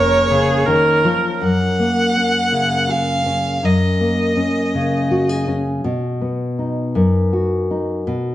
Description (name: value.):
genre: acoustic folk-pop ballad.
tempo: 54 BPM (dotted quarters).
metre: 6/8.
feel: straight.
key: F# major.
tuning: A4 = 440 Hz.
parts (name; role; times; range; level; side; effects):
rich violin; melody; 0.0-5.5 s; C#5 to F#5; -20 LUFS; equal; none.
rich viola; second line; 0.0-1.4 s; G#4 to A#4; -18 LUFS; right 2 dB; none.
nylon-string guitar; accompaniment; 0.0-8.3 s; F#2 to G#4; -17 LUFS; left 1 dB; none.
felt-muted upright piano; arpeggios; 0.0-1.7 s; C#5; -26 LUFS; right 8 dB; none.
vintage muted fingered electric bass; bass; 0.0-1.4 s; E#1; -26 LUFS; right 1 dB; none.
room: wet large studio reverb, RT60 1.3 s.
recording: nothing above 10.6 kHz.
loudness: -15 LUFS.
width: side -14 dB against mid.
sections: 0.0-1.4 A section; 1.4-8.3 B section.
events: none.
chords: 0.0 A#m7/E#; 1.4 F#add9; 5.8 B.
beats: 0.31 | 1.41 2.52 | 3.63 4.73 | 5.84 6.95 | 8.05.